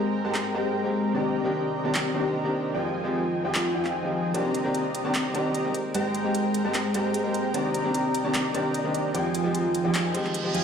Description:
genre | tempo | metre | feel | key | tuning
future bass | 150 BPM | 4/4 | half-time | C minor | A4 = 436 Hz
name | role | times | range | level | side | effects
bright grand piano | accompaniment | 0.0-10.6 s | Eb3 to G4 | -29 LUFS | left 1 dB | tape echo
shimmering ambient pad | sustained chords | 0.0-10.6 s | Eb3 to G5 | -36 LUFS | right 2 dB | chorus, built-in reverb
big bright polysynth | riff | 0.0-10.6 s | F3 to Bb5 | -26 LUFS | equal | wide subtle chorus, tape echo
trap drum kit | drums | 0.3-10.6 s | handclaps, hi-hat | -31 LUFS | right 1 dB | none
reverse cymbal | sound effects | 10.1-10.6 s | none | -32 LUFS | right 6 dB | none
room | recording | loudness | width
wet digital room reverb, RT60 1.1 s | played on a big sound system in a bare room, stone room reverb | -24 LUFS | side -7 dB against mid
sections
0.0-10.6 A section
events
reverse cymbal 10.1-10.6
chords
0.0 Abmaj9; 1.1 Cm7; 2.7 Fm7; 4.3 Cm7; 5.7 Abmaj9; 7.5 Cm7; 9.1 Fm7

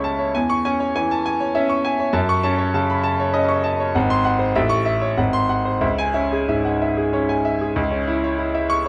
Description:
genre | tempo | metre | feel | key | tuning
classical, virtuoso piano study | 90-101 BPM | 3/4 | rubato | C# minor | A4 = 440 Hz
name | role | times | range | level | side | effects
bright grand piano | solo | 0.0-8.9 s | G#1 to C#6 | -20 LUFS | equal | none
room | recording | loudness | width
moderate recital hall reverb, RT60 1.7 s | none | -20 LUFS | mono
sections
0.0-7.8 A section; 7.8-8.9 B section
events
none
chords
0.3 C#m/E; 2.1 D#m7b5/F#; 3.9 G#7; 4.6 A; 5.2 G#7; 5.8 C#m

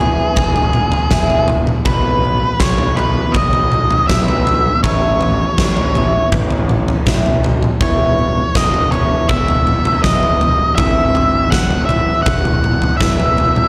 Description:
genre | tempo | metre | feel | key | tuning
quiet-loud alternative rock | 81 BPM | 4/4 | straight | E major | A4 = 440 Hz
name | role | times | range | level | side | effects
octave-fuzz lead guitar | melody | 0.0-13.7 s | G#4 to F#5 | -20 LUFS | equal | distortion, slapback echo, digital delay
picked acoustic archtop guitar | arpeggios | 0.0-13.7 s | B2 to E4 | -24 LUFS | equal | slapback echo
fuzz picked electric bass | bass | 0.0-13.6 s | E1 to B1 | -21 LUFS | equal | overdrive
huge arena drum kit | drums | 0.4-13.7 s | kick drum, snare drum, toms | -18 LUFS | equal | none
room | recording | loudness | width
light reverb | live gig heard through the venue's PA, recital hall reverb | -15 LUFS | mono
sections
0.0-13.7 A section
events
none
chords
0.0 E; 1.9 Bsus4; 4.8 Aadd9; 7.8 E

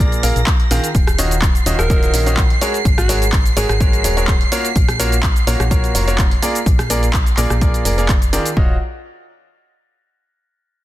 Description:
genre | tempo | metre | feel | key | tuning
piano house | 126 BPM | 4/4 | swing 53% on 16ths | Eb dorian | A4 = 440 Hz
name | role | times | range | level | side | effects
rich studio violin section | sustained chords | 0.0-8.6 s | Bb6 to C7 | -26 LUFS | right 2 dB | sidechain pumping
clear baby grand piano | riff | 0.0-8.7 s | Eb3 to F5 | -21 LUFS | equal | sidechain pumping, ping-pong delay
solid FM bass | bass | 0.0-8.8 s | Eb1 to Bb1 | -19 LUFS | equal | sidechain pumping
punchy analog drum machine | drums | 0.0-8.5 s | handclaps, hi-hat, rim click, shaker | -22 LUFS | equal | none
electronic kick drum | drums | 0.5-8.7 s | none | -16 LUFS | equal | none
growling alto saxophone | melody | 1.8-3.8 s | Gb4 to Bb4 | -24 LUFS | right 2 dB | ping-pong delay
room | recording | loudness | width
small room ambience | dense, heavily limited modern master | -13 LUFS | side -15 dB against mid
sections
0.0-8.6 A section; 8.6-10.5 B section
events
drop 0.0-8.6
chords
0.0 Bb7; 0.9 Ebm9; 2.6 Ab9sus4; 4.5 Gbmaj7/Bb; 6.4 Bb7; 8.6 Ebm9

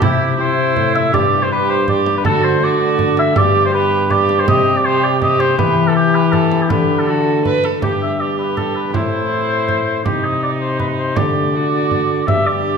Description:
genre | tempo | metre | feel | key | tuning
classical, renaissance-style consort dance | 162 BPM | 3/4 | straight | G major | A4 = 442 Hz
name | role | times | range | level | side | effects
mellow oboe | melody | 0.0-12.8 s | G4 to E5 | -18 LUFS | left 1 dB | none
warm viola | second line | 0.0-12.8 s | Eb4 to B4 | -20 LUFS | right 5 dB | none
concert harp | accompaniment | 0.0-12.8 s | G2 to G4 | -21 LUFS | left 8 dB | none
clear trombone | bass | 0.0-12.8 s | G2 to E3 | -21 LUFS | right 2 dB | none
frame drum | percussion | 0.0-12.5 s | none | -22 LUFS | right 4 dB | none
room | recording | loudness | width
wet recital hall reverb, RT60 1.5 s | minimal, uncompressed stereo recording | -13 LUFS | side -6 dB against mid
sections
0.0-7.8 A section; 7.8-12.8 B section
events
none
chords
0.0 C; 1.1 G; 2.3 D; 3.4 G; 4.5 C5; 5.6 Em; 6.7 Dsus4; 7.1 D; 7.8 G; 8.9 Am; 10.1 Cm; 11.2 Dsus4

